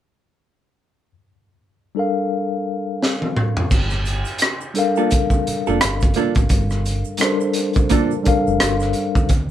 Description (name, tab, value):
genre	R&B, neo-soul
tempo	86 BPM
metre	4/4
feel	swing 58% on 16ths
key	G minor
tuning	A4 = 440 Hz
part	mellow tine electric piano	accompaniment	1.9-9.3 s	G3 to F5	-21 LUFS	left 3 dB	fast stereo tremolo
part	crunchy breakbeat drum kit	drums	3.0-9.5 s	crash cymbal, hi-hat, kick drum, rim click, snare drum, toms	-19 LUFS	equal	none
part	fingered electric bass	bass	3.7-9.5 s	F1 to Eb2	-23 LUFS	equal	none
part	tube shaker and finger snaps	percussion	3.7-9.5 s	none	-35 LUFS	right 7 dB	none
part	vintage hollow-body jazz guitar	second line	5.0-8.1 s	Bb3 to A4	-19 LUFS	right 6 dB	none
room	light reverb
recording	band playing live in one room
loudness	-17 LUFS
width	side -11 dB against mid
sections	0.9-3.7 A section; 3.7-9.5 B section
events	drums muted 0.9-3.7; drum fill 3.0-3.7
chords	0.9 Gm9